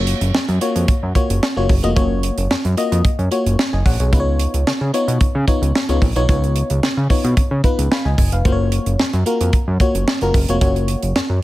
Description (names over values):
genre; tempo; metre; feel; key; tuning
early-eighties boogie funk; 111 BPM; 4/4; straight; F# major; A4 = 440 Hz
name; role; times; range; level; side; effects
FM electric piano; accompaniment; 0.0-11.1 s; A#3 to B5; -21 LUFS; left 2 dB; chorus
fat analog bass; bass; 0.0-11.4 s; E#1 to C#3; -18 LUFS; equal; none
tight funk drum kit; drums; 0.1-11.3 s; hi-hat, kick drum, snare drum; -18 LUFS; equal; none
room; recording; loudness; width
small room ambience; none; -15 LUFS; side -16 dB against mid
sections
0.0-11.4 A section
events
none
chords
0.0 F#maj7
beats
0.34 0.88 1.43 | 1.97 2.51 3.05 3.59 | 4.13 4.67 5.21 5.75 | 6.29 6.83 7.37 7.91 | 8.45 8.99 9.53 10.07 | 10.61 11.15